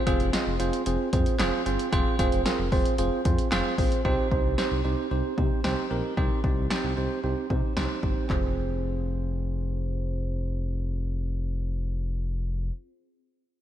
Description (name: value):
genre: synth-pop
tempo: 113 BPM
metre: 4/4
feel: straight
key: F minor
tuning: A4 = 440 Hz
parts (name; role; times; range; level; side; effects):
- bell-like tine electric piano; accompaniment; 0.1-12.7 s; C4 to Eb5; -28 LUFS; right 3 dB; wide subtle chorus
- smooth gliding synth bass; bass; 0.1-12.7 s; F1 to C3; -29 LUFS; left 1 dB; none
- punchy analog drum machine; drums; 0.1-8.4 s; handclaps, hi-hat, kick drum, snare drum; -27 LUFS; left 1 dB; none
room: light reverb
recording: none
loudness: -24 LUFS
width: side -11 dB against mid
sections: 0.0-4.0 A section; 4.0-8.3 B section; 8.3-12.5 C section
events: none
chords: 0.0 Fm; 4.0 Cm; 8.3 Fm